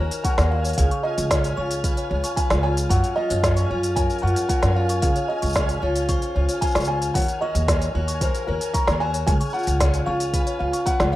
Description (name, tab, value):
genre	folktronica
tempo	113 BPM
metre	4/4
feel	straight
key	Db major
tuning	A4 = 443 Hz
part	felt-muted upright piano	melody	0.0-11.2 s	Bb4 to Bb5	-27 LUFS	equal	ping-pong delay
part	music box	second line	0.0-11.2 s	Db5 to Db6	-33 LUFS	left 4 dB	ping-pong delay
part	picked steel-string acoustic guitar	arpeggios	0.0-11.2 s	Db3 to C5	-28 LUFS	equal	none
part	upright bass	bass	0.0-11.2 s	Db2 to Gb2	-23 LUFS	equal	none
part	flickering grainy texture	texture	0.0-11.2 s	Ab5 to F6	-34 LUFS	equal	built-in reverb
part	organic electronic drum kit	drums	0.1-11.1 s	hi-hat, shaker, snare drum	-26 LUFS	equal	none
part	electronic kick drum	drums	0.2-11.0 s	none	-24 LUFS	equal	none
room	moderate studio reverb, RT60 0.6 s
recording	rough home demo mix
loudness	-19 LUFS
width	side -15 dB against mid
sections	0.0-11.2 A section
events	none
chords	0.0 Ebm; 0.8 Db7; 2.9 Gbmaj7; 5.0 Dbmaj7; 7.2 Ebm; 9.3 Db7